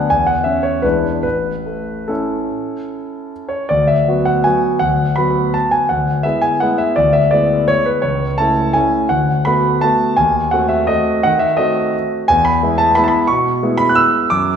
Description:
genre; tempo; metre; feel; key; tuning
classical, piano waltz; 137-194 BPM; 3/4; rubato; unclear; A4 = 440 Hz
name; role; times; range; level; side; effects
warm concert grand piano; solo; 0.0-14.6 s; A1 to F#6; -13 LUFS; equal; none
room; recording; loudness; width
wet recital hall reverb, RT60 1.4 s; recorded in a church or concert hall; -13 LUFS; side -7 dB against mid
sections
0.0-3.7 A section; 3.7-14.6 B section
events
none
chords
0.1 E69; 0.8 E7; 1.2 A; 3.7 Bm/D; 5.9 E7/D; 8.0 A/C#; 9.1 Bm7/D; 10.2 D#dim7; 12.3 E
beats
| 0.11 0.46 0.84 | 1.24 1.66 2.10 | 2.51 2.90 3.31 | 3.70 4.08 4.45 | 4.81 5.17 5.54 | 5.89 6.24 6.61 | 6.98 7.33 7.69 | 8.04 8.40 8.76 | 9.11 9.47 9.84 | 10.19 10.53 10.89 | 11.24 11.59 11.94 | 12.29 12.63 12.97 | 13.29 13.62 13.96 | 14.31

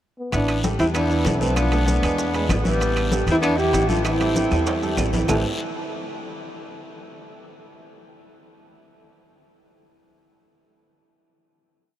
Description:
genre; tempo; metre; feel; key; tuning
Afro-Cuban jazz; 194 BPM; 4/4; straight; A minor; A4 = 436 Hz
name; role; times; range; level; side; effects
trombone with bucket mute; melody; 0.2-5.4 s; B3 to A4; -24 LUFS; equal; none
clear tenor saxophone; second line; 0.3-5.4 s; E3 to E4; -29 LUFS; left 2 dB; none
warm concert grand piano; accompaniment; 0.3-5.4 s; E3 to F5; -28 LUFS; right 3 dB; none
upright bass; bass; 0.3-5.4 s; A1 to E2; -24 LUFS; equal; none
bongos; percussion; 0.3-5.4 s; none; -36 LUFS; left 5 dB; none
congas; percussion; 0.3-5.4 s; none; -30 LUFS; left 2 dB; none
guiro; percussion; 0.3-5.4 s; none; -37 LUFS; left 4 dB; none
maracas; percussion; 0.3-5.4 s; none; -38 LUFS; right 4 dB; none
timbales; percussion; 0.3-5.4 s; none; -33 LUFS; right 4 dB; none
claves; percussion; 0.5-5.4 s; none; -39 LUFS; right 3 dB; none
room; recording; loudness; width
wet huge ambient reverb, RT60 7.6 s; in a vast, echoing space; -19 LUFS; side -12 dB against mid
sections
0.0-0.3 pickup bar; 0.3-5.3 A section; 5.3-6.5 final chord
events
drum fill 4.5-5.3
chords
0.3 A9sus4; 1.6 Bm7b5; 2.2 E7; 2.8 Am9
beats
0.01 | 0.33 0.64 0.95 1.26 | 1.57 1.88 2.19 2.50 | 2.81 3.12 3.42 3.73 | 4.04 4.35 4.66 4.97 | 5.28

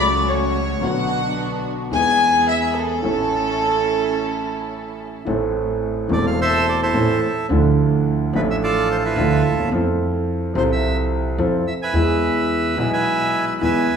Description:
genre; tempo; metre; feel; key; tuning
tango; 108 BPM; 4/4; rubato; A major, A harmonic minor from 5.3 s; A4 = 440 Hz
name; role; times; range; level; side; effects
warm chamber violin section; second line; 0.0-5.0 s; A4 to G#5; -20 LUFS; left 1 dB; none
warm grand piano; accompaniment; 0.0-13.9 s; E1 to E5; -21 LUFS; left 1 dB; none
muted studio string section; stabs; 0.0-5.2 s; A3 to A4; -26 LUFS; right 3 dB; none
upright bass; bass; 0.0-13.9 s; E1 to F2; -25 LUFS; right 3 dB; none
bandoneon; melody; 6.1-14.0 s; E4 to G#5; -21 LUFS; right 4 dB; none
room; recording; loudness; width
wet recital hall reverb, RT60 1.4 s; recorded in a church or concert hall, small room ambience; -17 LUFS; side -7 dB against mid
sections
0.0-5.3 A section; 5.3-14.0 B section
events
violin section solo 0.0-5.3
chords
0.0 F#m/C#; 0.8 Bm; 1.9 E; 3.0 A; 5.3 Am; 7.5 Dmadd9; 9.7 Fmaj7; 12.0 E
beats
0.26 | 0.82 1.37 1.93 2.48 | 3.04 3.59 4.15 4.71 | 5.27 5.83 6.38 6.94 | 7.50 8.06 8.61 9.17 | 9.72 10.28 10.84 11.39 | 11.95 12.51 13.07 13.63

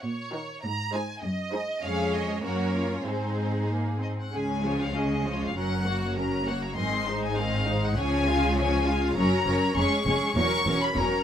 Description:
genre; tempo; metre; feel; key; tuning
quick classical-period movement for string orchestra; 100 BPM; 2/4; rubato; Db major; A4 = 443 Hz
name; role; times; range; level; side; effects
rich chamber violin section; melody; 0.0-11.2 s; Bb4 to C#6; -30 LUFS; left 3 dB; none
rich symphonic cello section; bass; 0.0-11.0 s; E2 to Db3; -30 LUFS; equal; none
rich symphonic violin section; second line; 0.3-11.2 s; Eb4 to F5; -32 LUFS; equal; none
warm symphonic viola section; accompaniment; 0.3-11.2 s; Eb3 to F4; -30 LUFS; equal; none
warm studio double bass section; bass; 4.3-11.1 s; E1 to Db2; -32 LUFS; equal; none
room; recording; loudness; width
light reverb; close, detailed microphones; -24 LUFS; side -9 dB against mid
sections
0.0-4.3 A section; 4.3-11.2 B section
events
none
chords
0.0 Ebm7/Bb; 0.6 Ab; 1.2 Ab7/Gb; 1.8 Db/F; 2.4 Gb; 3.1 Ab; 4.3 Db; 5.6 Gb; 6.8 Ab; 8.0 Db; 9.2 F#; 9.8 C#/E#; 10.4 F#7/E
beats
0.03 | 0.64 1.24 | 1.83 2.44 | 3.07 3.71 | 4.34 4.96 | 5.57 6.17 | 6.77 7.38 | 7.98 8.58 | 9.17 9.77 | 10.36 10.96

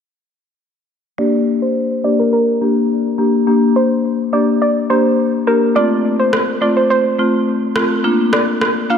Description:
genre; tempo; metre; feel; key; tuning
dancehall; 105 BPM; 4/4; straight; G minor; A4 = 439 Hz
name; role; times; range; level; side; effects
soft round pluck; melody; 1.2-9.0 s; Bb4 to F5; -18 LUFS; right 2 dB; chorus, low-pass filter, analog delay
marimba with medium hard mallets; accompaniment; 1.2-9.0 s; A3 to G4; -15 LUFS; left 2 dB; low-pass filter
electronic rim click; drums; 6.3-8.8 s; none; -19 LUFS; right 1 dB; overdrive
room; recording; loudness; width
wet church reverb, RT60 2.9 s; dreamy mix soaked in reverb; -13 LUFS; side -7 dB against mid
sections
1.2-9.0 A section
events
filter sweep 1.2-9.0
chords
1.2 Gm; 5.8 F; 8.0 Bb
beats
| 1.19 1.76 2.33 2.90 | 3.47 4.04 4.62 5.19 | 5.76 6.33 6.90 7.47 | 8.04 8.62

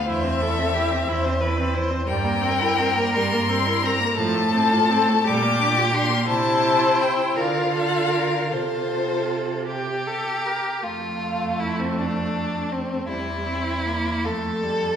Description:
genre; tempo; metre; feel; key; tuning
classical, slow romantic movement for string quartet; 50-62 BPM (dotted quarters); 6/8; rubato; F major; A4 = 443 Hz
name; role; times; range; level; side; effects
rich violin; melody; 0.0-15.0 s; C5 to D6; -24 LUFS; left 5 dB; none
rich violin; second line; 0.0-15.0 s; C4 to C5; -25 LUFS; left 1 dB; none
clear viola; accompaniment; 0.0-15.0 s; F3 to Bb4; -26 LUFS; right 2 dB; none
rich cello; bass; 0.1-15.0 s; E2 to D3; -27 LUFS; right 3 dB; none
room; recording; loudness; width
wet recital hall reverb, RT60 1.8 s; recorded in a church or concert hall; -20 LUFS; side -8 dB against mid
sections
0.0-10.9 A section; 10.9-15.0 B section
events
none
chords
0.1 C/E; 2.1 C7/G; 4.2 F/A; 5.3 Gm7/Bb; 6.3 C; 7.4 Bbmaj7/D; 8.5 F/C; 9.7 C5; 10.9 F; 13.1 C/E; 14.2 F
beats
| 0.07 1.07 | 2.06 3.15 | 4.16 5.25 | 6.28 7.37 | 8.51 9.70 | 10.85 11.98 | 13.08 14.25

